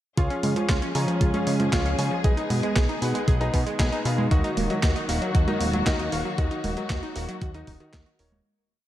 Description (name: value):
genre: italo disco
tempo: 116 BPM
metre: 4/4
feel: straight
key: Eb minor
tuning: A4 = 441 Hz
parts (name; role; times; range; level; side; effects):
- warm symphonic string section; sustained chords; 0.2-8.4 s; Eb3 to Ab4; -31 LUFS; left 1 dB; none
- analog pluck; arpeggios; 0.2-8.4 s; Eb3 to Bb4; -31 LUFS; right 2 dB; chorus, tape echo
- clear concert grand piano; stabs; 0.2-8.4 s; Eb4 to Bb5; -31 LUFS; left 2 dB; tape echo
- fat analog bass; bass; 0.2-8.4 s; Eb1 to Db3; -28 LUFS; equal; tube saturation
- clean 12-bit digital drum machine; drums; 0.2-8.4 s; congas, handclaps, hi-hat, snare drum; -29 LUFS; right 1 dB; overdrive
- electronic kick drum; drums; 0.2-8.0 s; none; -23 LUFS; equal; overdrive
room: light reverb, digital ambience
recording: dark, warm production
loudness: -22 LUFS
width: side -13 dB against mid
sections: 0.2-8.5 chorus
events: fade-out 5.7-8.5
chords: 0.2 Db; 2.2 Abm/Cb; 4.3 Ebm